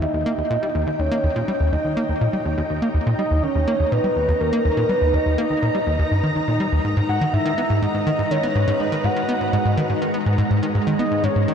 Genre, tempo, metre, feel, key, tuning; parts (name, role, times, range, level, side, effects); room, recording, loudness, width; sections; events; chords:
ambient, sequencer-driven space music; 123 BPM; 4/4; straight; G# minor; A4 = 438 Hz
soft octave-layered synth lead; melody; 0.0-11.5 s; A#4 to F#5; -23 LUFS; equal; chorus, phaser, shimmer reverb, ping-pong delay
string machine, full ensemble; sustained chords; 0.0-11.5 s; G#3 to A#5; -25 LUFS; equal; ensemble chorus, shimmer reverb
plucky analog bass; riff; 0.0-11.5 s; D#2 to B3; -21 LUFS; equal; vintage 12-bit sampler grit, ping-pong delay
wet huge ambient reverb, RT60 8.6 s; dark, warm production; -18 LUFS; side -7 dB against mid
0.0-11.5 A section
0.0 D#; 6.8 G#m